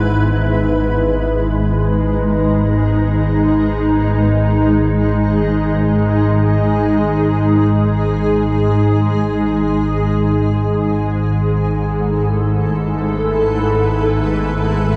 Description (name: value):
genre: ambient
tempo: free time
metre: none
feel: none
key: G# phrygian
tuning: A4 = 440 Hz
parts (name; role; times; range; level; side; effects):
- granular cloud pad; sustained chords; 0.0-15.0 s; G#2 to B4; -19 LUFS; equal; built-in reverb, subtle chorus
- organ-like drone; drone; 0.0-15.0 s; G#1 to G#2; -18 LUFS; equal; ensemble chorus, built-in reverb
room: wet lush hall reverb, RT60 2.7 s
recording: dreamy mix soaked in reverb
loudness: -16 LUFS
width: mono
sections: 0.3-15.0 A section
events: none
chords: 0.3 G#m; 9.5 A5/G#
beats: free time